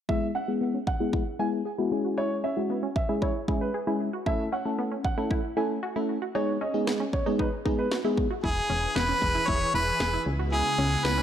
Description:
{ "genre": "synth-pop", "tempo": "115 BPM", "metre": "4/4", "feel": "straight", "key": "unclear", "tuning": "A4 = 440 Hz", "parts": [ { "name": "warm baby grand piano", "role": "second line", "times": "0.1-7.9 s", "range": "B4 to G#5", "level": "-33 LUFS", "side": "right 2 dB", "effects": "tape echo" }, { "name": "mellow FM electric piano", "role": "accompaniment", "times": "0.1-8.3 s", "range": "G#3 to A4", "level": "-28 LUFS", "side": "left 1 dB", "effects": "chorus, phaser, low-pass filter" }, { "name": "wide unison pluck", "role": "arpeggios", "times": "0.1-11.2 s", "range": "B3 to G#4", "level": "-34 LUFS", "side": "equal", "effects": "auto-pan, low-pass filter, tape echo" }, { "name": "house drum kit", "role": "drums", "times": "0.1-11.2 s", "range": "kick drum, snare drum", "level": "-30 LUFS", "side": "equal", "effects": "none" }, { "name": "clear harmonica", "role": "melody", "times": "8.4-11.2 s", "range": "G#4 to C#5", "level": "-26 LUFS", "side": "equal", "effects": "none" }, { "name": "string machine, violins", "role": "sustained chords", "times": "8.4-11.2 s", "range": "C#3 to B4", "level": "-34 LUFS", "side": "equal", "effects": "ensemble chorus" }, { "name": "solid FM bass", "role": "bass", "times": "8.4-11.2 s", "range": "E1 to C#2", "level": "-30 LUFS", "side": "equal", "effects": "none" } ], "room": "light reverb, digital ambience", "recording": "dry, gritty hardware recording", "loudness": "-25 LUFS", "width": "side -9 dB against mid", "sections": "0.1-8.4 A section; 8.4-11.2 B section", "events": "filter sweep 0.1-8.4", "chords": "0.1 C#m7; 4.3 A; 6.3 G#m; 8.4 E; 10.3 C#m7" }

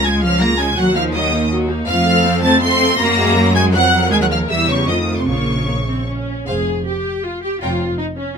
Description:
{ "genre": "quick classical-period movement for string orchestra", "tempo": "160 BPM", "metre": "3/4", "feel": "rubato", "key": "Bb minor", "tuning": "A4 = 441 Hz", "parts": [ { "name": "warm symphonic violin section", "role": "melody", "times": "0.0-7.8 s", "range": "F5 to C7", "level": "-20 LUFS", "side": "left 2 dB", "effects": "none" }, { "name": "warm symphonic violin section", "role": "second line", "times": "0.0-7.8 s", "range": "C5 to C6", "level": "-20 LUFS", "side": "equal", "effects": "none" }, { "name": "rich symphonic viola section", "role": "accompaniment", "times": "0.0-8.4 s", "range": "Gb3 to Bb4", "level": "-21 LUFS", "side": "left 1 dB", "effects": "none" }, { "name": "clear symphonic double bass section", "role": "bass", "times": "0.0-7.9 s", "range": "F1 to Gb2", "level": "-21 LUFS", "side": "right 1 dB", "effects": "none" }, { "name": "rich symphonic cello section", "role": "bass", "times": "0.0-7.9 s", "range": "F2 to C4", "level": "-20 LUFS", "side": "right 1 dB", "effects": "none" } ], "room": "light reverb", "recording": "none", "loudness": "-14 LUFS", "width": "side -6 dB against mid", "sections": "0.0-6.5 A section; 6.5-8.4 B section", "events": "none", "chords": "0.0 Db; 0.8 Ebm; 1.9 F; 3.0 Gb; 4.1 Eb5; 4.5 Em6; 4.9 F7; 5.3 Bbm; 6.5 Fm; 7.6 Gm7b5/F" }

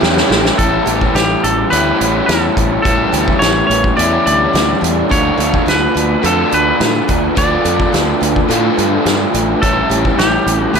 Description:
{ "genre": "rock, shoegaze and dream pop", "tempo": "106 BPM", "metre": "4/4", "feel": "straight", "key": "A mixolydian", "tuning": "A4 = 444 Hz", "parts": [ { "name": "phased string machine", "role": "sustained chords", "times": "0.0-0.6 s", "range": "none", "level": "barely audible", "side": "none", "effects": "none" }, { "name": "picked plugged-in twelve-string acoustic guitar", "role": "arpeggios", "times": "0.0-10.8 s", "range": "E3 to A4", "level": "-25 LUFS", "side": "right 7 dB", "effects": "analog chorus, slapback echo" }, { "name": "overdriven electric guitar", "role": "riff", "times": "0.0-10.8 s", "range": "A2 to G4", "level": "-17 LUFS", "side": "left 10 dB", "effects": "lush chorus" }, { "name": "raw garage guitar", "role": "riff", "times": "0.0-10.8 s", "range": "A2 to F4", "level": "-19 LUFS", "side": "right 12 dB", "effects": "overdrive, reverse reverb" }, { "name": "modern bright fingered electric bass", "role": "bass", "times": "0.0-10.8 s", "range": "A1 to A2", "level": "-20 LUFS", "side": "right 1 dB", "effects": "none" }, { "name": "loose indie drum kit", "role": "drums", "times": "0.0-10.8 s", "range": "hi-hat, kick drum, snare drum", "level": "-18 LUFS", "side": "right 1 dB", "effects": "none" }, { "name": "twangy electric guitar", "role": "melody", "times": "0.6-10.8 s", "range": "G4 to D5", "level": "-18 LUFS", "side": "equal", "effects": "spring reverb, slapback echo" } ], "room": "moderate huge ambient reverb, RT60 7.9 s", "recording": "none", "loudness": "-11 LUFS", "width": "side -6 dB against mid", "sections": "0.6-10.8 A section", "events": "drum fill 0.0-0.6", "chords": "0.0 A7sus4; 5.1 Dm6; 9.6 A7(no3)" }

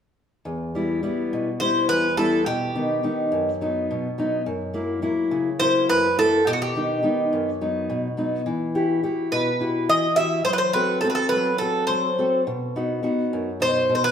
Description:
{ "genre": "greek folk, Greek bouzouki band", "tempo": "210 BPM (eighths)", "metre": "7/8", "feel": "straight", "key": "E harmonic minor", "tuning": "A4 = 440 Hz", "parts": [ { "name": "fingerpicked steel-string acoustic guitar", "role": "accompaniment", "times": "0.5-14.1 s", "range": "E2 to A4", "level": "-23 LUFS", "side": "left 1 dB", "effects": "none" }, { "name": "Greek bouzouki", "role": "melody", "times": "1.6-14.1 s", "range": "F#4 to E5", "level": "-21 LUFS", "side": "right 1 dB", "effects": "none" } ], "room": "wet large studio reverb, RT60 1.3 s", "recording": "band playing live in one room", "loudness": "-20 LUFS", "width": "side -8 dB against mid", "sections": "0.5-14.1 A section", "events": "none", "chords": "0.5 Em; 2.5 B; 4.5 F#7; 6.5 B; 8.5 Emadd9; 10.5 F#dim; 12.5 B" }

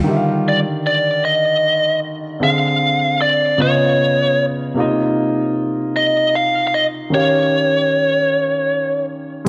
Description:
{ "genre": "R&B", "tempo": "51 BPM (dotted quarters)", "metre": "6/8", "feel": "straight", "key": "Eb major", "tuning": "A4 = 439 Hz", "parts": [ { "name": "clean electric guitar", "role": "second line", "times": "0.0-0.6 s", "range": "Eb3 to F4", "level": "-24 LUFS", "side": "equal", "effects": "none" }, { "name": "warm concert grand piano", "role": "accompaniment", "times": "0.0-9.5 s", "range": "C3 to F5", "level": "-22 LUFS", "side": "equal", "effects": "none" }, { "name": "biting lead guitar", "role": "melody", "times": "0.5-9.1 s", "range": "Db5 to F5", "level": "-18 LUFS", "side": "equal", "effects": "overdrive" } ], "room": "moderate echo chamber reverb, RT60 1.9 s", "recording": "none", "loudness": "-17 LUFS", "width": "mono", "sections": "0.1-9.5 A section", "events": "none", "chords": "0.1 Ebmaj9; 2.4 Dm7b5; 3.6 Db9; 4.8 Cm7; 7.1 Eb9" }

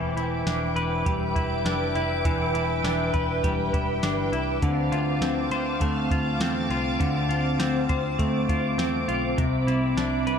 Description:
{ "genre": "dream pop", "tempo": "101 BPM", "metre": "4/4", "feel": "straight", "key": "unclear", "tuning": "A4 = 436 Hz", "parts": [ { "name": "ensemble organ-string", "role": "sustained chords", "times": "0.0-10.4 s", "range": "C4 to D6", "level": "-28 LUFS", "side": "right 1 dB", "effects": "ensemble chorus" }, { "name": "clean electric guitar", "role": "arpeggios", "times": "0.0-10.4 s", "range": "C3 to C5", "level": "-26 LUFS", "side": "left 2 dB", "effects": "wide subtle chorus, digital delay" }, { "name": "vintage muted picked electric bass", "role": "bass", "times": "0.0-10.4 s", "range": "E1 to E2", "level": "-31 LUFS", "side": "equal", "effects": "none" }, { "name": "soft vintage rhythm box", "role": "drums", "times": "0.2-10.4 s", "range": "hi-hat, kick drum, snare drum", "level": "-29 LUFS", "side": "equal", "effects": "none" } ], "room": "moderate huge ambient reverb, RT60 6.2 s", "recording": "none", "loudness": "-22 LUFS", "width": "side -7 dB against mid", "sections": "0.0-10.4 A section", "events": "none", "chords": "0.0 Em7; 4.6 Dm7; 9.4 Cmaj9" }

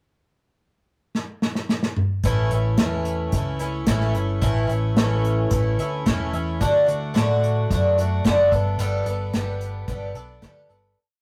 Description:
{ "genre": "folk rock and heartland rock", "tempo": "110 BPM", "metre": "4/4", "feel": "straight", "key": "A mixolydian", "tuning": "A4 = 439 Hz", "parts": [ { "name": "unplugged drum kit", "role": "drums", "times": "1.1-10.8 s", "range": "hi-hat, kick drum, snare drum, toms", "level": "-26 LUFS", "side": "equal", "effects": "none" }, { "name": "picked twelve-string acoustic guitar", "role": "accompaniment", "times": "2.2-11.0 s", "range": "A2 to A4", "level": "-26 LUFS", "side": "equal", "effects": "none" }, { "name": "picked electric bass", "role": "bass", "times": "2.2-10.9 s", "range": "E1 to A2", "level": "-26 LUFS", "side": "equal", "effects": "none" } ], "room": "moderate booth ambience, RT60 0.2 s", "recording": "rough rehearsal-room recording, warm saturation", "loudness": "-22 LUFS", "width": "mono", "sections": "0.1-2.2 pickup bar; 2.2-11.0 verse", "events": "drum fill 1.1-2.2; fade-out 8.8-11.0", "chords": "0.1 N.C.; 2.2 A; 6.6 D; 8.5 Gadd9" }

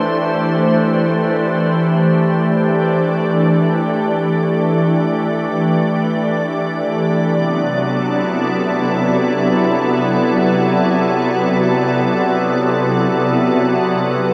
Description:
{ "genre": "ambient", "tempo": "free time", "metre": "none", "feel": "none", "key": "C lydian", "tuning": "A4 = 441 Hz", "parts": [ { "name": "soft additive organ-like pad", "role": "solo", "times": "0.0-14.3 s", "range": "C3 to D5", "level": "-16 LUFS", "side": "equal", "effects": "ensemble chorus, built-in reverb, dub echo" } ], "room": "wet plate reverb, RT60 3.5 s", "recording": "echo-heavy mix", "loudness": "-16 LUFS", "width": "mono", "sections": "0.0-14.3 A section", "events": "none", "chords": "0.0 Cadd9; 7.2 Bm7/C" }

